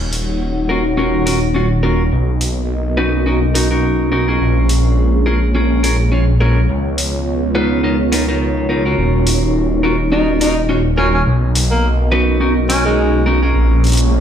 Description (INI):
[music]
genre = glitch hop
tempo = 105 BPM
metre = 4/4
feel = swing 57% on 16ths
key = Eb minor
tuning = A4 = 440 Hz
[part]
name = dark analog pad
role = sustained chords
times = 0.0-14.2 s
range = Bb3 to Gb5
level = -22 LUFS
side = equal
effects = chorus
[part]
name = phased detuned saw bass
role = bass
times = 0.0-14.2 s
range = Eb1 to Db2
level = -16 LUFS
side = equal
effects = phaser
[part]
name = electronic hi-hat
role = drums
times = 0.1-14.0 s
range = none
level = -22 LUFS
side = equal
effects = none
[part]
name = clean electric guitar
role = stabs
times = 0.7-14.2 s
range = Cb4 to Db5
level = -18 LUFS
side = right 1 dB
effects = vintage 12-bit sampler grit, tape echo
[part]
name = breathy tenor saxophone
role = melody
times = 10.1-13.3 s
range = Ab3 to Eb4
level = -19 LUFS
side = equal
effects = tape echo
[part]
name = riser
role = sound effects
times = 13.8-14.2 s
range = none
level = -27 LUFS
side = left 1 dB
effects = none
[sound]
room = moderate studio reverb, RT60 0.7 s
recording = played on a big sound system in a bare room, stone room reverb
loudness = -13 LUFS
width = side -9 dB against mid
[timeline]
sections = 0.0-14.2 A section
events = riser 13.8-14.2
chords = 0.0 Ebm7; 2.1 Bmaj7; 4.4 Bbm7; 6.7 Db13; 9.0 Ebm7; 11.3 Bmaj7; 13.6 Bbm7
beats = 0.41 0.98 1.55 | 2.12 2.70 3.27 3.84 | 4.41 4.98 5.55 6.12 | 6.70 7.27 7.84 8.41 | 8.98 9.55 10.12 10.70 | 11.27 11.84 12.41 12.98 | 13.55 14.12